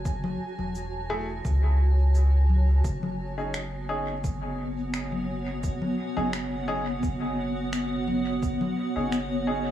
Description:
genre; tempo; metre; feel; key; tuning
ambient dub; 86 BPM; 4/4; straight; unclear; A4 = 440 Hz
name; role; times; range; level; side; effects
granular cloud pad; sustained chords; 0.0-9.7 s; B3 to A5; -31 LUFS; right 1 dB; built-in reverb
soft dub sub bass; bass; 0.0-9.7 s; E1 to C#2; -26 LUFS; equal; none
electronic cabasa, congas and finger snaps; drums; 0.1-9.3 s; none; -35 LUFS; left 3 dB; studio reverb, dub echo
electronic kick drum; drums; 0.1-8.6 s; none; -32 LUFS; equal; studio reverb
clear upright piano; stabs; 1.1-9.7 s; A3 to G#4; -33 LUFS; left 1 dB; dub echo
room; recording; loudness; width
light reverb, digital ambience; small room ambience; -24 LUFS; side -12 dB against mid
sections
0.0-9.7 A section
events
none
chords
0.0 F#m7; 2.8 B6/F#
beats
| 0.05 0.75 1.45 2.15 | 2.84 3.54 4.24 4.94 | 5.63 6.33 7.03 7.73 | 8.43 9.12

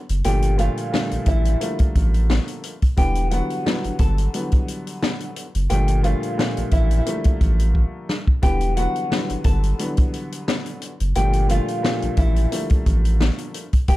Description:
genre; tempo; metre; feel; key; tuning
hip hop, boom-bap hip-hop; 88 BPM; 4/4; swing 54% on 16ths; unclear; A4 = 440 Hz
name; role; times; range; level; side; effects
saturated sub bass; bass; 0.1-14.0 s; E1 to A1; -19 LUFS; equal; none
vintage drum kit; drums; 0.1-14.0 s; hi-hat, kick drum, snare drum; -21 LUFS; equal; none
dark upright piano; accompaniment; 0.2-13.6 s; Bb2 to B3; -27 LUFS; left 1 dB; cassette tape
nylon-string guitar; melody; 0.3-14.0 s; E4 to A5; -26 LUFS; left 1 dB; digital delay
room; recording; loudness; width
little or no reverb; dark, warm production; -18 LUFS; side -17 dB against mid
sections
0.0-14.0 A section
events
drum fill 7.7-8.4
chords
0.2 Gm9; 3.0 Em9; 5.7 Gm9; 8.4 Em9; 11.2 Gm9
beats
| 0.25 0.93 1.61 2.29 | 2.98 3.66 4.34 5.02 | 5.70 6.38 7.07 7.75 | 8.43 9.11 9.79 10.48 | 11.16 11.84 12.52 13.20 | 13.88

